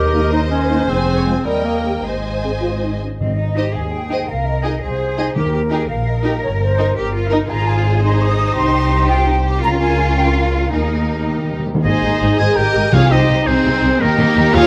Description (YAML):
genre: classical, dramatic, fast romantic movement for symphony orchestra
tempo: 101-114 BPM (dotted quarters)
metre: 6/8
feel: straight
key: Ab major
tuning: A4 = 439 Hz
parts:
  - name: warm symphonic violin section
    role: melody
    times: 0.0-14.7 s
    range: G4 to Ab5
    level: -28 LUFS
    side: equal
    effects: none
  - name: warm clarinet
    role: second line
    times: 0.0-3.0 s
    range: G3 to G4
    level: -23 LUFS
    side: equal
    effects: none
  - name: warm symphonic violin section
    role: second line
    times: 0.0-14.7 s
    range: Eb4 to Eb5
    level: -27 LUFS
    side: equal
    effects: none
  - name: warm symphonic viola section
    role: accompaniment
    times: 0.0-14.7 s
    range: Bb3 to C5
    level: -24 LUFS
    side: equal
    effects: none
  - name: rich studio double bass section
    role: bass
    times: 0.0-14.6 s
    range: F1 to Eb2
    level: -22 LUFS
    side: equal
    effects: none
  - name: rich symphonic cello section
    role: bass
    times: 0.0-14.6 s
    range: Eb2 to Bb4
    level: -26 LUFS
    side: equal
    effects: none
  - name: dark French horn section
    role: sustained chords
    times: 0.1-3.1 s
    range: Ab3 to Ab4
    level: -27 LUFS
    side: equal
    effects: none
  - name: bright large flute ensemble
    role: second line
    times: 3.2-11.7 s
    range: Bb4 to Eb6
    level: -24 LUFS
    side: equal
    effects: none
  - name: timpani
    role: percussion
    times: 3.2-5.9, 11.3-13.4 s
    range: Ab2 to Eb3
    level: -22 LUFS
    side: equal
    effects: none
  - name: clear oboe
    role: second line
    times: 11.8-14.7 s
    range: Bb4 to Ab5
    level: -20 LUFS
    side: equal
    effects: none
room: moderate recital hall reverb, RT60 1.8 s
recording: close, detailed microphones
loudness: -17 LUFS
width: mono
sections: 0.0-3.2 A section; 3.2-11.9 B section; 11.9-14.7 B section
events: timpani fill 11.3-11.9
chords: 0.0 Eb; 0.9 Fm; 1.5 Eb; 2.0 Ab; 4.3 Ab/C; 5.4 Eb; 6.4 Eb/G; 7.5 Ab; 8.6 Cm; 9.6 Db6; 10.7 Ebsus4; 11.9 Ab; 12.9 Ab/C; 14.0 Eb